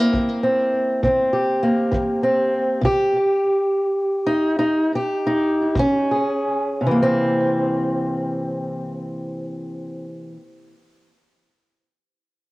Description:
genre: acoustic country blues, solo or duo.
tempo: 54-67 BPM (dotted quarters).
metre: 12/8.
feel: straight.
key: C mixolydian.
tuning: A4 = 440 Hz.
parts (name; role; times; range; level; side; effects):
fingerpicked old ladder-braced acoustic guitar; melody; 0.0-10.4 s; C3 to Ab4; -18 LUFS; equal; tape echo.
kick drum; drums; 0.1-5.9 s; none; -27 LUFS; equal; cassette tape.
room: light reverb.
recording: home recording on cassette.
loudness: -18 LUFS.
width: side -20 dB against mid.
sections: 0.0-6.8 A section; 6.8-11.3 B section.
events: slowing down 1.6-6.8.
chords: 0.0 C7; 2.8 N.C.; 5.8 Db5; 6.8 C7.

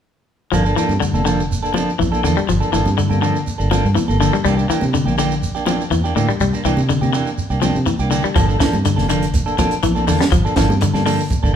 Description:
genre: afrobeat.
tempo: 122 BPM.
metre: 4/4.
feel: straight.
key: G dorian.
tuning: A4 = 441 Hz.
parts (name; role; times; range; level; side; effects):
clean electric guitar; arpeggios; 0.5-11.3 s; D3 to G3; -20 LUFS; left 7 dB; none.
semi-hollow electric guitar; stabs; 0.5-11.6 s; E3 to A4; -21 LUFS; right 3 dB; none.
fingered electric bass; bass; 0.5-11.6 s; F1 to C3; -20 LUFS; right 1 dB; none.
congas; percussion; 0.5-11.4 s; none; -27 LUFS; right 1 dB; none.
shekere; percussion; 0.5-11.6 s; none; -26 LUFS; right 3 dB; none.
compact cocktail drum kit; drums; 8.4-11.5 s; hi-hat, kick drum, snare drum; -19 LUFS; right 1 dB; none.
room: wet large studio reverb, RT60 1.2 s.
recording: band playing live in one room.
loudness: -15 LUFS.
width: side -8 dB against mid.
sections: 0.5-11.6 A section.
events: none.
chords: 0.5 Gm9; 4.4 C9; 8.4 Gm9.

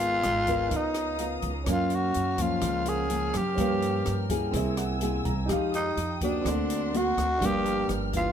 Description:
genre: bossa nova.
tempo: 125 BPM.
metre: 4/4.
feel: straight.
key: unclear.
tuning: A4 = 440 Hz.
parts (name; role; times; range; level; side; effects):
growling tenor saxophone; melody; 0.0-8.3 s; D4 to Ab4; -28 LUFS; left 1 dB; none.
nylon-string guitar; accompaniment; 0.0-8.3 s; Gb2 to Bb4; -31 LUFS; left 2 dB; none.
warm grand piano; accompaniment; 0.0-8.3 s; C4 to Bb5; -35 LUFS; right 5 dB; none.
dark studio string section; sustained chords; 0.0-8.3 s; Bb4 to Gb6; -38 LUFS; left 2 dB; none.
upright bass; bass; 0.0-8.3 s; G1 to G2; -31 LUFS; right 1 dB; none.
open jazz drum kit; drums; 0.0-8.2 s; hi-hat, kick drum, rim click; -36 LUFS; equal; none.
room: little or no reverb.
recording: close, detailed microphones.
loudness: -25 LUFS.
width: side -8 dB against mid.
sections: 0.0-8.3 A section.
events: grand piano fill 4.5-5.5.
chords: 0.0 Abm9; 0.7 Db13; 1.7 Gbmaj7; 3.6 Gm7b5; 4.5 Caug7; 5.5 Fm9; 6.5 Daug7; 7.4 Gm7.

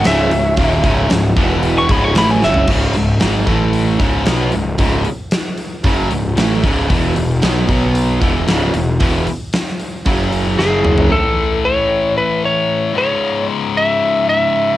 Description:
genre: hard rock.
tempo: 114 BPM.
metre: 4/4.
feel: straight.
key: C# minor.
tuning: A4 = 440 Hz.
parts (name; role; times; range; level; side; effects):
lightly driven lead guitar; melody; 0.0-2.7, 10.6-14.8 s; G#4 to C#6; -16 LUFS; equal; cassette tape, plate reverb.
bright tonewheel organ; sustained chords; 0.0-2.7 s; C#4 to F#5; -26 LUFS; equal; none.
high-gain distorted guitar; riff; 0.0-14.8 s; C#2 to B3; -20 LUFS; left 6 dB; distortion, cassette tape.
overdriven semi-hollow guitar; riff; 0.0-11.1 s; C#2 to B3; -20 LUFS; right 6 dB; cassette tape.
fuzz picked electric bass; bass; 0.0-11.1 s; C#1 to B1; -18 LUFS; equal; overdrive.
huge arena drum kit; drums; 0.0-11.1 s; crash cymbal, hi-hat, kick drum, snare drum, toms; -18 LUFS; equal; cassette tape.
room: moderate booth ambience, RT60 0.2 s.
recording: home recording on cassette.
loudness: -13 LUFS.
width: side -14 dB against mid.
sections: 0.0-2.7 A section; 2.7-11.1 B section; 11.1-14.8 C section.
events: lead electric guitar solo 0.0-2.7; drum fill 2.4, 10.6-11.1.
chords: 0.0 C#m; 1.4 E5; 1.9 C#m; 2.7 C#5; 3.5 A5; 4.0 C#m; 6.9 E5; 7.7 B5; 8.2 E5; 10.1 F#5; 11.1 A; 13.0 C#m.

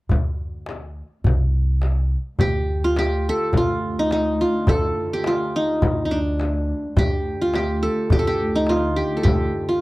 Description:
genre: Arabic maqam ensemble.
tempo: 105 BPM.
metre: 4/4.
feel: straight.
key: D maqam kurd.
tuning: A4 = 440 Hz.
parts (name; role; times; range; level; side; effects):
upright bass; bass; 0.1-9.5 s; C2 to D2; -23 LUFS; equal; none.
darbuka; percussion; 0.1-9.6 s; none; -25 LUFS; equal; none.
frame drum; percussion; 0.1-9.4 s; none; -27 LUFS; left 2 dB; none.
qanun; melody; 2.4-9.8 s; D4 to A4; -21 LUFS; equal; none.
muted studio cello section; drone; 2.4-9.8 s; D2; -29 LUFS; equal; none.
room: studio ambience.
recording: dry, close 1970s-style studio recording.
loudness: -18 LUFS.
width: side -20 dB against mid.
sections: 0.1-2.4 A section; 2.4-9.8 B section.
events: none.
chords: none.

